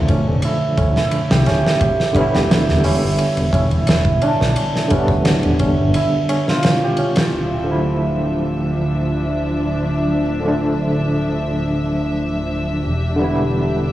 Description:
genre	trip hop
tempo	87 BPM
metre	4/4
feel	straight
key	D dorian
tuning	A4 = 440 Hz
part	cimbalom	melody	0.0-10.0 s	D4 to G4	-22 LUFS	right 2 dB	vintage 12-bit sampler grit, tape echo
part	barky tine electric piano	accompaniment	0.0-13.9 s	D3 to E4	-20 LUFS	equal	medium stereo tremolo, cassette tape, tape echo
part	dark detuned saw bass	bass	0.0-13.9 s	D1 to D2	-22 LUFS	equal	transformer saturation
part	huge arena drum kit	drums	0.1-7.3 s	hi-hat, kick drum, ride cymbal, snare drum	-19 LUFS	equal	cassette tape
part	tabla	percussion	0.1-7.3 s	none	-26 LUFS	left 1 dB	none
part	dark studio string section	sustained chords	7.3-13.9 s	F3 to E5	-23 LUFS	left 1 dB	cassette tape
room	light reverb, small room ambience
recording	home recording on cassette, vinyl crackle, small room reverb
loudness	-15 LUFS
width	side -14 dB against mid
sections	0.0-7.3 A section; 7.3-13.9 B section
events	filter sweep on tine electric piano 0.0-7.3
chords	0.0 Dmadd9; 1.8 Em7; 7.3 Dmadd9; 12.8 Em7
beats	0.43 1.12 | 1.81 2.50 3.19 3.88 | 4.57 5.26 5.95 6.64 | 7.33 8.02 8.71 9.40 | 10.09 10.78 11.46 12.15 | 12.84 13.53

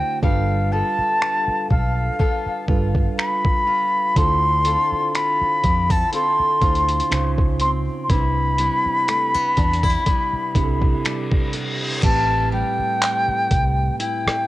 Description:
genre	contemporary R&B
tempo	61 BPM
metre	4/4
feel	swing 54% on 16ths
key	A minor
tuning	A4 = 440 Hz
part	concert flute	melody	0.0-14.5 s	F5 to B#5	-20 LUFS	left 1 dB	cassette tape
part	mellow tine electric piano	accompaniment	0.0-14.5 s	A2 to C5	-28 LUFS	right 6 dB	medium stereo tremolo, cassette tape
part	fingerpicked steel-string acoustic guitar	arpeggios	0.0-14.5 s	A2 to A4	-30 LUFS	left 6 dB	cassette tape
part	vintage muted fingered electric bass	bass	0.2-14.3 s	G1 to F2	-23 LUFS	equal	none
part	dusty soul sampler-style drum kit	drums	0.2-14.5 s	crash cymbal, finger snaps, handclaps, hi-hat, kick drum, rim click	-21 LUFS	equal	overdrive, vintage 12-bit sampler grit
part	reverse cymbal	sound effects	10.9-12.0 s	none	-30 LUFS	left 1 dB	none
room	light reverb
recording	home recording on cassette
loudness	-17 LUFS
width	side -16 dB against mid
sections	0.0-12.0 A section; 12.0-14.5 B section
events	reverse cymbal 10.9-12.0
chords	0.2 G9; 4.2 Dm7; 7.1 C#maj7; 8.1 Cmaj7; 12.0 Am7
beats	| 0.23 1.21 2.19 3.18 | 4.16 5.14 6.13 7.11 | 8.10 9.08 10.06 11.05 | 12.03 13.01 14.00

